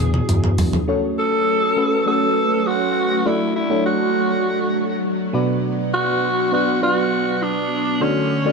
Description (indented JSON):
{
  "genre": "1980s-style pop",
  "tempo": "101 BPM",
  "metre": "4/4",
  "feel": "straight",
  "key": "F# minor",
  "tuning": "A4 = 442 Hz",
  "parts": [
    { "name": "raspy alto saxophone", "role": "melody", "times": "0.0-8.5 s", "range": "C#4 to A4", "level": "-20 LUFS", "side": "right 1 dB", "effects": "ping-pong delay" },
    { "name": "mellow FM electric piano", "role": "accompaniment", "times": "0.0-8.5 s", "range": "B2 to D5", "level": "-22 LUFS", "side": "left 1 dB", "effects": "chorus, phaser" },
    { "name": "smooth synth bass", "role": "bass", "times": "0.0-0.8 s", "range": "E2", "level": "-21 LUFS", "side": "equal", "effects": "none" },
    { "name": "clean 12-bit digital drum machine", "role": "drums", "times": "0.1-0.9 s", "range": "hi-hat, toms", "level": "-19 LUFS", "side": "equal", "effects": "none" },
    { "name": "soft string machine", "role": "sustained chords", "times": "0.9-8.5 s", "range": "D3 to A4", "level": "-24 LUFS", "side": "equal", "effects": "ensemble chorus" }
  ],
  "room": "moderate plate reverb, RT60 2.1 s",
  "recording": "dark, warm production",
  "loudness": "-17 LUFS",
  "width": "side -4 dB against mid",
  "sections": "0.9-8.5 A section",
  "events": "drum fill 0.0-0.9",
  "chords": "0.0 E7; 0.9 F#m; 3.3 D/F#; 5.3 Bm; 8.0 D"
}